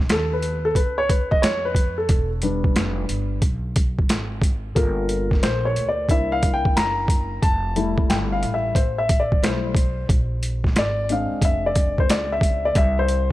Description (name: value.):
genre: hip hop, jazz-hop.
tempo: 90 BPM.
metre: 4/4.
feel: swing 66% on 16ths.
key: unclear.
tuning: A4 = 441 Hz.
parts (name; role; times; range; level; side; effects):
upright bass; bass; 0.0-13.3 s; E1 to F2; -26 LUFS; equal; none.
boom bap sampler-style drum kit; drums; 0.0-13.3 s; hi-hat, kick drum, snare drum; -20 LUFS; equal; overdrive.
dark grand piano; accompaniment; 0.1-13.3 s; G3 to Bb5; -23 LUFS; left 2 dB; none.
room: light reverb, studio ambience.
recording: none.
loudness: -19 LUFS.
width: side -16 dB against mid.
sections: 0.0-13.3 A section.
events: grand piano solo 0.0-13.3.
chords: 0.0 B7; 2.1 Em7; 4.8 Gm7; 6.1 C7; 7.4 Fmaj9; 10.1 Bb9; 12.8 C.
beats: 0.09 0.76 1.43 | 2.09 2.76 3.43 4.09 | 4.76 5.43 6.09 6.76 | 7.43 8.09 8.76 9.43 | 10.09 10.76 11.43 12.09 | 12.76.